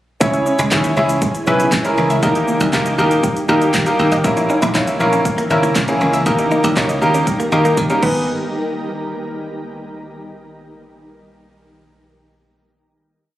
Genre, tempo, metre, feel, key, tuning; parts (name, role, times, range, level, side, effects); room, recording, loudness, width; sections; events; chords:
dance-pop; 119 BPM; 4/4; straight; A4 = 440 Hz
clear concert grand piano; accompaniment; 0.2-8.3 s; A#3 to E5; -17 LUFS; equal; sidechain pumping
shimmering ambient pad; sustained chords; 0.5-8.3 s; A#2 to A#4; -24 LUFS; equal; chorus, built-in reverb, sidechain pumping
wide unison pluck; arpeggios; 0.2-8.3 s; D#3 to E5; -25 LUFS; equal; sidechain pumping, digital delay
dry thumbed slap bass; bass; 0.2-8.3 s; G#1 to D#3; -19 LUFS; equal; sidechain pumping
pop drum kit; drums; 0.2-8.1 s; crash cymbal, handclaps, hi-hat, kick drum, shaker, snare drum, toms; -21 LUFS; equal; overdrive
direct-recorded clean electric guitar; riff; 4.4-8.2 s; A#3 to G4; -24 LUFS; right 2 dB; analog chorus
light reverb; recorded on a phone in the room, club reverb, faint mains hum; -14 LUFS; side -14 dB against mid
0.2-8.3 pre-chorus; 8.3-10.3 final hit
drum fill 7.8-8.3
0.2 C#m; 2.2 D#; 4.2 A#dim; 6.3 D#; 8.0 G#m; 8.3 N.C.